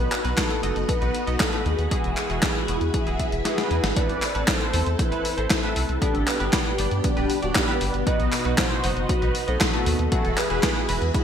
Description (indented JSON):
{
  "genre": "italo disco",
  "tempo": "117 BPM",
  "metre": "4/4",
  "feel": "straight",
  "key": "A dorian",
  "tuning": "A4 = 437 Hz",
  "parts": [
    { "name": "mellow synth brass", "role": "melody", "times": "0.0-11.2 s", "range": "D4 to D#5", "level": "-27 LUFS", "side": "equal", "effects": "chorus, digital delay" },
    { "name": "phased string machine", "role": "sustained chords", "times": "0.0-11.2 s", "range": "B2 to B4", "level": "-30 LUFS", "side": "left 1 dB", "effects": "ensemble chorus, phaser" },
    { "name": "direct-recorded clean electric guitar", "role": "stabs", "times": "0.0-11.2 s", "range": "B3 to D#5", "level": "-32 LUFS", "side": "right 2 dB", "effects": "ensemble chorus" },
    { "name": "round analog bass", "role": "bass", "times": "0.0-11.1 s", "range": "D1 to G2", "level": "-27 LUFS", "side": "equal", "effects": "none" },
    { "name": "gated 80s digital drum machine", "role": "drums", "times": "0.1-11.2 s", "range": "handclaps, hi-hat, snare drum", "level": "-26 LUFS", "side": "equal", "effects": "gated reverb, gated reverb snare" },
    { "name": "electronic kick drum", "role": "drums", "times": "0.4-11.2 s", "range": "none", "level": "-26 LUFS", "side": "equal", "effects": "none" }
  ],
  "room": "light reverb",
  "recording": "bright 1980s-style digital production",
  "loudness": "-21 LUFS",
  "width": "side -8 dB against mid",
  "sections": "0.0-4.0 A section; 4.0-11.2 B section",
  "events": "kick drops out 3.5-4.0; drum fill 3.5-4.0",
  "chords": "0.0 B; 1.9 Eadd9; 4.0 Amadd9; 6.0 G; 8.1 B; 10.1 Eadd9"
}